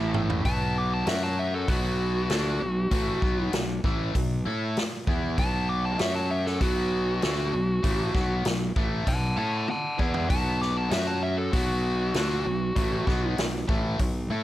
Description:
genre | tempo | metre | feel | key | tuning
blues rock power trio and southern rock | 97 BPM | 4/4 | straight | unclear | A4 = 440 Hz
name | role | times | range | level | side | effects
distorted electric guitar | riff | 0.0-14.4 s | A2 to A4 | -30 LUFS | left 1 dB | overdrive
fuzz fingered electric bass | bass | 0.0-14.4 s | A1 to A2 | -29 LUFS | equal | overdrive
vintage drum kit | drums | 0.1-14.1 s | hi-hat, kick drum, snare drum, toms | -29 LUFS | equal | none
biting lead guitar | melody | 0.5-13.3 s | F#4 to D6 | -30 LUFS | equal | overdrive
room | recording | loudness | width
little or no reverb | none | -24 LUFS | side -14 dB against mid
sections
0.4-14.4 A section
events
drum fill 0.0-0.4, 9.7-10.3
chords
0.4 B5; 1.1 F#5; 1.7 B5; 6.0 F#5; 6.6 B5; 10.9 F#5; 11.5 B5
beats
| 0.45 1.07 1.68 2.30 | 2.92 3.54 4.15 4.77 | 5.38 6.00 6.61 7.23 | 7.84 8.46 9.07 9.69 | 10.30 10.91 11.53 12.14 | 12.76 13.38 13.99

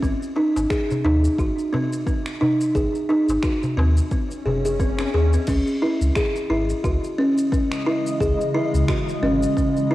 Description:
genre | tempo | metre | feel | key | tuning
organic downtempo | 88 BPM | 4/4 | swing 57% on 16ths | C# harmonic minor | A4 = 437 Hz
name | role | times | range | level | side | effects
buzzing kalimba | arpeggios | 0.0-9.9 s | B#3 to G#4 | -21 LUFS | equal | cassette tape, analog delay
warm sub bass | bass | 0.0-9.5 s | F#1 to D#2 | -22 LUFS | equal | sidechain pumping
deep house drum kit | drums | 0.0-9.9 s | crash cymbal, finger snaps, shaker | -35 LUFS | equal | studio reverb
electronic kick drum | drums | 0.0-9.7 s | none | -24 LUFS | equal | overdrive, studio reverb
darbuka | percussion | 0.4-5.3 s | none | -29 LUFS | left 1 dB | none
swell | sound effects | 4.4-5.5 s | none | -31 LUFS | left 3 dB | none
granular cloud pad | sustained chords | 7.2-9.9 s | C#3 to D#5 | -26 LUFS | left 1 dB | built-in reverb, sidechain pumping, cassette tape
room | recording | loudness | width
moderate lush hall reverb, RT60 1.8 s | home recording on cassette | -19 LUFS | side -16 dB against mid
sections
0.0-5.5 A section; 5.5-9.9 B section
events
swell 4.4-5.5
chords
0.0 G#7; 5.5 C#madd9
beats
| 0.03 0.71 1.39 2.07 | 2.75 3.43 4.12 4.80 | 5.48 6.16 6.84 7.53 | 8.21 8.89 9.57

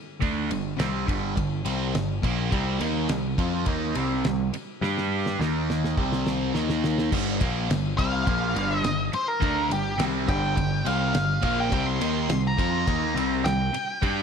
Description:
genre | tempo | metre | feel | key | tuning
classic rock | 104 BPM | 4/4 | straight | G minor | A4 = 441 Hz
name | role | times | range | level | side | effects
cranked stack guitar | riff | 0.2-14.2 s | G2 to G4 | -29 LUFS | right 11 dB | overdrive, phaser
sludgy distorted guitar | riff | 0.2-14.2 s | G2 to G4 | -30 LUFS | left 11 dB | overdrive
growling picked electric bass | bass | 0.2-14.2 s | G1 to G2 | -30 LUFS | equal | overdrive
damped 70s drum kit | drums | 0.2-14.2 s | crash cymbal, kick drum, ride cymbal, snare drum | -30 LUFS | equal | none
raw garage guitar | riff | 2.5-14.2 s | G2 to G4 | -32 LUFS | equal | overdrive, spring reverb
octave-fuzz lead guitar | melody | 8.0-14.2 s | G4 to C6 | -28 LUFS | equal | distortion
room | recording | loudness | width
light reverb, studio reverb | none | -23 LUFS | side -6 dB against mid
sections
0.0-7.1 A section; 7.1-14.2 B section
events
drum fill 4.8-7.1; lead electric guitar solo 7.1-14.2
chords
0.0 Gm; 2.5 C5; 4.8 G5; 5.4 Eb5; 6.0 C5; 6.5 Eb5; 7.1 Gm; 11.7 C5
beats
| 0.22 0.79 1.37 1.94 | 2.52 3.10 3.67 4.25 | 4.82 5.40 5.97 6.55 | 7.12 7.70 8.27 8.85 | 9.42 10.00 10.57 11.14 | 11.72 12.29 12.87 13.44 | 14.02

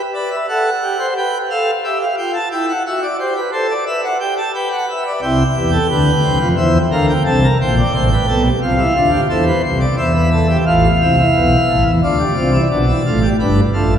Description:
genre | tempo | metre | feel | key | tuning
classical, baroque-style 3-part fugue for pipe organ | 88 BPM | 4/4 | straight | C major | A4 = 440 Hz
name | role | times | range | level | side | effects
pipe organ, plenum | solo | 0.1-13.9 s | G1 to A5 | -13 LUFS | equal | none
room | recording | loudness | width
wet cathedral reverb, RT60 4.5 s | heard from further back in the room | -13 LUFS | side -8 dB against mid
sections
0.0-10.7 A section; 10.7-14.0 B section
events
none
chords
0.0 G; 1.2 G7; 2.5 C/E; 3.9 G; 5.2 C; 6.6 C7; 7.9 F/A; 9.3 C; 10.7 Fmaj7/A; 12.0 Bdim; 13.4 Em7/G (rootless)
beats
0.48 1.16 1.83 | 2.50 3.18 3.85 4.53 | 5.21 5.89 6.57 7.25 | 7.93 8.62 9.30 9.98 | 10.66 11.35 12.03 12.71 | 13.38

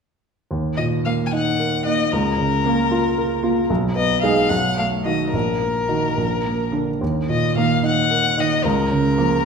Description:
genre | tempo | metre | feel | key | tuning
quick classical-period movement for piano trio | 74 BPM (dotted quarters) | 6/8 | rubato | Eb minor | A4 = 440 Hz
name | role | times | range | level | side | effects
warm grand piano | accompaniment | 0.5-9.4 s | Bb1 to Bb4 | -20 LUFS | right 1 dB | none
rich violin | melody | 0.8-9.4 s | Bb4 to Ab5 | -22 LUFS | left 4 dB | none
clear cello | second line | 1.0-9.4 s | D3 to Bb3 | -27 LUFS | right 7 dB | none
room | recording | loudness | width
wet recital hall reverb, RT60 1.5 s | recorded in a church or concert hall | -17 LUFS | side -5 dB against mid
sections
0.5-9.4 A section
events
none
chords
0.5 Ebm; 2.1 Bbm/Db; 3.7 Abm/Cb; 4.5 B7; 5.3 Ebm/Bb; 6.2 Bb; 7.0 Ebm; 8.6 Bbm/Db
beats
| 0.51 1.33 | 2.12 2.92 | 3.70 4.51 | 5.34 6.17 | 7.01 7.84 | 8.64 9.45

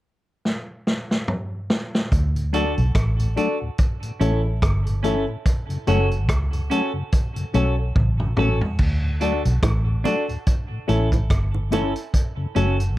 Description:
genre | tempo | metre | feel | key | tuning
roots reggae | 72 BPM | 4/4 | swing 58% on 16ths | D major | A4 = 440 Hz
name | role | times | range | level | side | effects
vintage drum kit | drums | 0.5-13.0 s | crash cymbal, hi-hat, kick drum, rim click, snare drum, toms | -22 LUFS | equal | none
vintage muted fingered electric bass | bass | 2.1-13.0 s | F#1 to D2 | -21 LUFS | equal | none
mellow tonewheel organ | accompaniment | 2.4-12.9 s | D2 to D4 | -27 LUFS | left 2 dB | slow rotary speaker
semi-hollow electric guitar | accompaniment | 2.5-12.8 s | C#4 to A4 | -29 LUFS | right 6 dB | spring reverb, tape echo
dark upright piano | stabs | 2.5-12.7 s | C#4 to D5 | -25 LUFS | left 6 dB | none
bongos | percussion | 9.6-11.9 s | none | -28 LUFS | right 6 dB | none
room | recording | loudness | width
light reverb | dark, warm production | -19 LUFS | side -16 dB against mid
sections
0.0-2.1 A section; 2.1-8.8 B section; 8.8-13.0 C section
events
drum fill 0.4-2.1, 8.0-8.8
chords
0.0 N.C.; 2.1 D; 3.8 A; 5.5 F#m; 8.8 D; 10.5 A; 12.1 F#m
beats
0.45 1.28 | 2.12 2.95 3.79 4.62 | 5.46 6.29 7.13 7.96 | 8.80 9.63 10.47 11.30 | 12.14

